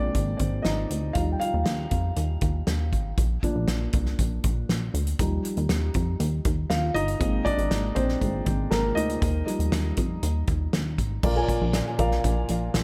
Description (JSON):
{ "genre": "piano-driven pop", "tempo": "119 BPM", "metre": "4/4", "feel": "straight", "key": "Eb major", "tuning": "A4 = 440 Hz", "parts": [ { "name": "dark upright piano", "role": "accompaniment", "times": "0.0-12.8 s", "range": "Bb2 to Ab5", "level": "-31 LUFS", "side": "equal", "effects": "analog delay" }, { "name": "plucky analog bass", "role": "bass", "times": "0.0-12.8 s", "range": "G1 to F2", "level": "-29 LUFS", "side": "equal", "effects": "none" }, { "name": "natural country drum kit", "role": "drums", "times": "0.1-12.8 s", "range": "crash cymbal, hi-hat, kick drum, snare drum", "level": "-30 LUFS", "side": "equal", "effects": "none" } ], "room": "light reverb, studio reverb", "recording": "echo-heavy mix", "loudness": "-26 LUFS", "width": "mono", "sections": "0.0-11.2 A section; 11.2-12.8 B section", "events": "upright piano solo 0.0-11.2", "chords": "0.0 Abadd9; 1.2 Ebadd9; 3.2 Bb; 5.2 Ebadd9; 7.2 Abadd9; 9.2 Ebadd9; 11.2 Bb" }